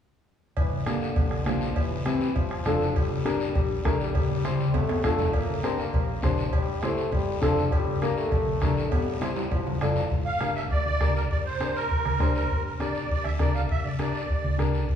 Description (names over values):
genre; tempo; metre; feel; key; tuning
latin, cumbia; 201 BPM; 4/4; straight; G dorian; A4 = 440 Hz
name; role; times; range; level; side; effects
bright trombone; second line; 0.6-10.1 s; D3 to C4; -32 LUFS; left 3 dB; none
hollow-body short-scale fingered electric bass; bass; 0.6-15.0 s; F1 to D2; -30 LUFS; right 1 dB; none
bombo; percussion; 0.6-15.0 s; none; -30 LUFS; left 1 dB; none
congas; percussion; 0.6-15.0 s; none; -32 LUFS; equal; none
cowbell and timbales; percussion; 0.6-10.0 s; none; -36 LUFS; right 3 dB; none
guiro; percussion; 0.6-15.0 s; none; -42 LUFS; left 3 dB; none
flamenco guitar; accompaniment; 0.9-14.8 s; Bb3 to D5; -30 LUFS; left 2 dB; none
musette accordion; melody; 10.3-14.6 s; Bb4 to F5; -29 LUFS; right 2 dB; none
room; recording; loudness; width
wet recital hall reverb, RT60 1.7 s; recorded in a church or concert hall; -23 LUFS; side -8 dB against mid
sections
0.6-10.1 A section; 10.1-15.0 B section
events
drum fill 4.1-5.3, 8.9-10.1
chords
0.6 Gm; 1.8 C/G; 2.4 Dm/G; 3.0 Gm; 4.1 C/G; 4.7 Dm/G; 5.3 Gm; 6.5 C/G; 7.1 Dm/G; 7.7 Gm; 8.9 C/G; 9.5 Dm/G; 10.1 Gm